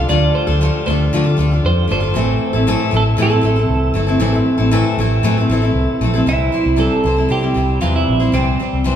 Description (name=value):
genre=acoustic pop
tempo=116 BPM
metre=4/4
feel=straight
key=unclear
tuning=A4 = 439 Hz
part: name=twelve-string electric guitar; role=melody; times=0.0-9.0 s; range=C4 to D5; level=-20 LUFS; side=right 3 dB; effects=none
part: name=picked steel-string acoustic guitar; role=accompaniment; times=0.0-9.0 s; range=A2 to C5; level=-18 LUFS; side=left 2 dB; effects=none
part: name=tonewheel organ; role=sustained chords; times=0.0-6.2 s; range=C3 to F4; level=-26 LUFS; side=right 1 dB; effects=overdrive, fast rotary speaker
part: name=vintage muted fingered electric bass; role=bass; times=0.0-8.9 s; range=G1 to D3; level=-17 LUFS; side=equal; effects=none
room=wet large studio reverb, RT60 1.5 s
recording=band playing live in one room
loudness=-13 LUFS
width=side -9 dB against mid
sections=0.0-6.3 A section; 6.3-9.0 B section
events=none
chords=0.0 Dm; 2.2 Am; 6.3 C